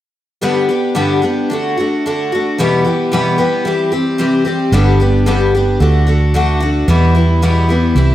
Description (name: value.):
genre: folk rock and heartland rock.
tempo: 111 BPM.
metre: 4/4.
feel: straight.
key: unclear.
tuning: A4 = 440 Hz.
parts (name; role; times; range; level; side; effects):
picked twelve-string acoustic guitar; accompaniment; 0.4-8.1 s; E2 to G4; -13 LUFS; left 1 dB; none.
hollow-body short-scale fingered electric bass; bass; 4.7-8.1 s; G1 to E2; -12 LUFS; right 1 dB; none.
room: moderate echo chamber reverb, RT60 1.7 s, small room ambience.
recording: none.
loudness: -12 LUFS.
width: side -13 dB against mid.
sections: 0.4-8.1 A section.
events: none.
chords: 0.4 G; 1.5 D; 2.6 Em; 3.6 C; 4.7 G; 5.8 D; 6.9 Em.